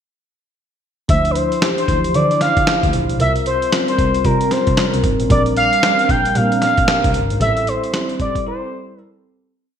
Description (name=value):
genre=R&B, new jack swing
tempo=114 BPM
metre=4/4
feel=swing 61% on 16ths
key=D minor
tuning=A4 = 440 Hz
part: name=expressive synth lead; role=melody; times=1.1-9.2 s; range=Bb4 to G5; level=-18 LUFS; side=equal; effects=chorus
part: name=bell-like tine electric piano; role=accompaniment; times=1.1-9.5 s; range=E3 to C5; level=-21 LUFS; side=right 1 dB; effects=phaser
part: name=rich double bass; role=bass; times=1.1-8.4 s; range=G1 to D3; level=-21 LUFS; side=equal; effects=none
part: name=dusty soul sampler-style drum kit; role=drums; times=1.1-8.5 s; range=handclaps, hi-hat, kick drum, snare drum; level=-20 LUFS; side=equal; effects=gated reverb
room=moderate lush hall reverb, RT60 1.7 s, digital ambience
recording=bright 1980s-style digital production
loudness=-14 LUFS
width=side -8 dB against mid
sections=1.1-9.5 verse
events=fade-out 7.4-9.5; break 8.5-9.5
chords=1.1 Dm9; 3.2 C7sus4; 5.3 Bb69; 7.4 Am7